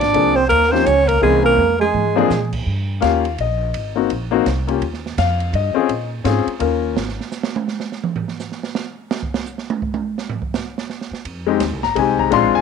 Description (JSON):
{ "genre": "jazz, small-group swing and bop", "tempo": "168 BPM", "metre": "3/4", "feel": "swing 63% on 8ths", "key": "Eb mixolydian", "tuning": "A4 = 440 Hz", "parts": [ { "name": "breathy alto saxophone", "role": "melody", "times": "0.0-2.5 s", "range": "Ab4 to D5", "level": "-16 LUFS", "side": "left 1 dB", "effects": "none" }, { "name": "clear trombone", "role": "second line", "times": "0.0-2.5 s", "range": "Ab3 to D4", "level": "-19 LUFS", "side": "right 13 dB", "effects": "none" }, { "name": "upright bass", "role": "bass", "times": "0.0-7.2, 11.1-12.6 s", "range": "F1 to Bb2", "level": "-22 LUFS", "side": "right 1 dB", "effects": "none" }, { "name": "open jazz drum kit", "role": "drums", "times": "0.0-12.4 s", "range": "crash cymbal, hi-hat, kick drum, ride cymbal, snare drum, toms", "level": "-26 LUFS", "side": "right 7 dB", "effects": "none" }, { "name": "warm grand piano", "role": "accompaniment", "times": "0.1-7.0, 11.5-12.6 s", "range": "E3 to C6", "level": "-18 LUFS", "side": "left 12 dB", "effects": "none" } ], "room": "light reverb, small room ambience", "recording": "1960s-style stereo with parts hard left and right", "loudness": "-16 LUFS", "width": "side -6 dB against mid", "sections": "0.0-2.7 A section; 2.7-12.6 B section", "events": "drum fill 1.6-2.3; drum solo 7.0-11.2", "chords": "0.0 Bb9; 0.5 Eb9; 1.2 C7b9; 1.6 Fm; 2.3 Absus2/Bb; 2.7 Eb9; 3.7 Ab9; 4.8 Ebadd9; 5.9 Bbm7; 6.6 Ebsus2; 7.0 N.C.; 11.2 Fm7" }